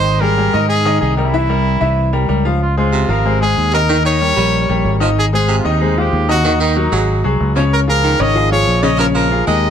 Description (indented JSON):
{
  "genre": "latin",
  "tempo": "188 BPM",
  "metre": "4/4",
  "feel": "straight",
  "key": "unclear",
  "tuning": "A4 = 441 Hz",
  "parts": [
    { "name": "clear trumpet", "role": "melody", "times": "0.0-9.7 s", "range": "Eb4 to Eb5", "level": "-18 LUFS", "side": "equal", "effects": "tape echo" },
    { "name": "bright grand piano", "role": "accompaniment", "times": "0.0-9.7 s", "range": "Db3 to F5", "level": "-17 LUFS", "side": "left 3 dB", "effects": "none" },
    { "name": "fingered electric bass", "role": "bass", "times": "0.0-9.7 s", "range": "Ab1 to Ab2", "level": "-16 LUFS", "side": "right 1 dB", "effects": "none" },
    { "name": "bright baritone saxophone", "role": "second line", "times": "2.9-9.7 s", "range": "C3 to Ab3", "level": "-22 LUFS", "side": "right 5 dB", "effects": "none" }
  ],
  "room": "little or no reverb",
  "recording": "close, detailed microphones",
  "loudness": "-12 LUFS",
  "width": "side -8 dB against mid",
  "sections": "0.0-2.6 A section; 2.6-9.7 B section",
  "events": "none",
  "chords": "0.1 Abmaj7; 1.3 C7; 2.6 Dbmaj9; 3.9 Eb7; 5.2 Ab6; 6.4 Ebm; 7.1 Ab7; 7.7 Db69; 9.0 Bbm7"
}